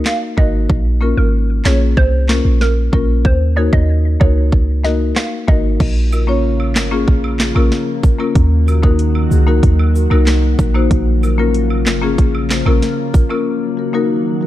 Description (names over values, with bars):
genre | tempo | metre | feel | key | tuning
dancehall | 94 BPM | 4/4 | straight | Bb minor | A4 = 438 Hz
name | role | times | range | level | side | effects
hollow square pluck | melody | 0.1-5.6 s | Bb4 to F5 | -23 LUFS | right 2 dB | chorus, ping-pong delay
island pop drum kit | drums | 0.1-13.3 s | crash cymbal, handclaps, hi-hat, kick drum, rim click, snare drum | -15 LUFS | equal | none
marimba with medium mallets | accompaniment | 0.4-14.5 s | Bb3 to Db5 | -19 LUFS | left 4 dB | none
clean 808-style bass | bass | 0.4-12.8 s | Ab1 to Eb2 | -14 LUFS | equal | none
glassy FM pad | sustained chords | 6.2-14.5 s | Db3 to Gb4 | -23 LUFS | equal | ensemble chorus, built-in reverb, sidechain pumping
cabasa and woodblock | percussion | 6.1-13.5 s | none | -31 LUFS | right 5 dB | none
room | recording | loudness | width
little or no reverb | dark, warm production | -12 LUFS | side -14 dB against mid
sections
0.0-5.8 A section; 5.8-14.5 B section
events
break 13.5-14.5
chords
0.0 Ebm; 0.7 Bbm; 3.2 Ebm; 5.8 Bbm; 8.4 Ebm; 10.9 Bbm; 13.5 Ebm